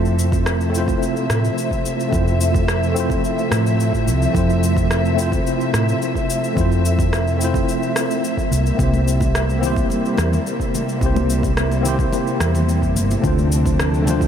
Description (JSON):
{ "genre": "sunset chillout", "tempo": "108 BPM", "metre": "4/4", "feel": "straight", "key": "F major", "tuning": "A4 = 440 Hz", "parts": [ { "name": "tine electric piano", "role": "accompaniment", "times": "0.0-14.3 s", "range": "A3 to C5", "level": "-22 LUFS", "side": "equal", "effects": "overdrive, fast stereo tremolo, auto-pan, analog delay" }, { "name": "dark studio string section", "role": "sustained chords", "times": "0.0-14.3 s", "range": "C3 to E5", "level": "-23 LUFS", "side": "equal", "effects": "vintage 12-bit sampler grit" }, { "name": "hollow-body short-scale fingered electric bass", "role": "bass", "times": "0.0-14.3 s", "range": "G1 to A2", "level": "-19 LUFS", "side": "equal", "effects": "tube saturation" }, { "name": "electronic cabasa and rim click", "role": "drums", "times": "0.1-14.3 s", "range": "none", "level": "-27 LUFS", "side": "equal", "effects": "overdrive" }, { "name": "electronic kick drum", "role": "drums", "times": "0.3-14.3 s", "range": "none", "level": "-23 LUFS", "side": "equal", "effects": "overdrive" }, { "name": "congas", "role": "percussion", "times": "8.8-14.2 s", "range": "none", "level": "-29 LUFS", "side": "left 4 dB", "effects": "none" } ], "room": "moderate huge ambient reverb, RT60 8.3 s", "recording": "dreamy mix soaked in reverb", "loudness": "-16 LUFS", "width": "side -8 dB against mid", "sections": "0.0-14.3 A section", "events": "none", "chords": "0.0 Fmaj7; 8.5 C7; 13.2 Dm7", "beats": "0.46 1.01 1.57 | 2.13 2.68 3.24 3.79 | 4.35 4.90 5.46 6.01 | 6.57 7.13 7.68 8.24 | 8.79 9.35 9.90 10.46 | 11.02 11.57 12.13 12.68 | 13.24 13.79" }